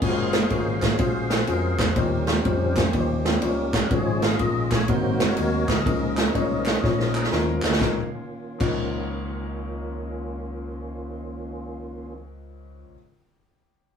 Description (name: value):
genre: uptempo gospel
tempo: 123 BPM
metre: 4/4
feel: swing 65% on 8ths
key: Db major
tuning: A4 = 442 Hz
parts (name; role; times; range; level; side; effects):
- clear grand piano; accompaniment; 0.0-13.0 s; Db2 to Bb5; -29 LUFS; left 4 dB; none
- percussive tonewheel organ; sustained chords; 0.0-12.1 s; C3 to F5; -28 LUFS; right 1 dB; overdrive, chorus vibrato, slow rotary speaker
- fingered electric bass; bass; 0.0-12.9 s; Gb1 to F2; -30 LUFS; equal; none
- swinging big-band drum kit; drums; 0.0-8.7 s; crash cymbal, kick drum, ride cymbal, snare drum; -24 LUFS; equal; none
- group handclap; percussion; 0.3-8.7 s; none; -35 LUFS; right 1 dB; none
room: moderate small room reverb, RT60 0.5 s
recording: band playing live in one room, small room ambience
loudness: -21 LUFS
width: side -7 dB against mid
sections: 0.0-7.8 A section; 7.8-11.7 B section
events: tonewheel organ solo 0.0-7.8; drum fill 6.8-7.8; grand piano fill 6.8-7.8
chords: 0.0 Gbmaj9; 2.0 Eb13; 3.9 Db/Ab; 4.9 Ab9; 5.9 Db69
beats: | 0.02 0.51 0.99 1.48 | 1.96 2.45 2.94 3.42 | 3.91 4.40 4.88 5.37 | 5.86 6.34 6.83 7.31 | 7.80 8.29 8.77 9.26 | 9.75 10.23 10.72 11.21